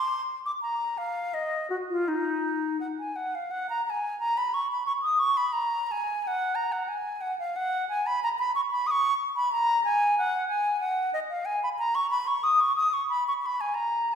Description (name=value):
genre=classical, baroque-style fantasia for unaccompanied flute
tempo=80-94 BPM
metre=3/4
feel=rubato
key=Eb minor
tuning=A4 = 440 Hz
part: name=bright wooden flute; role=solo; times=0.0-14.1 s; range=Eb4 to Eb6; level=-25 LUFS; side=equal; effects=none
room=wet recital hall reverb, RT60 1.4 s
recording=recorded in a church or concert hall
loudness=-25 LUFS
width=side -7 dB against mid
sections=0.0-3.5 A section; 3.5-14.2 A section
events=none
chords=none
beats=0.61 | 1.33 2.08 2.79 | 3.50 4.18 4.86 | 5.52 6.20 6.88 | 7.55 8.21 8.87 | 9.52 10.16 10.80 | 11.46 12.10 12.75 | 13.40 14.07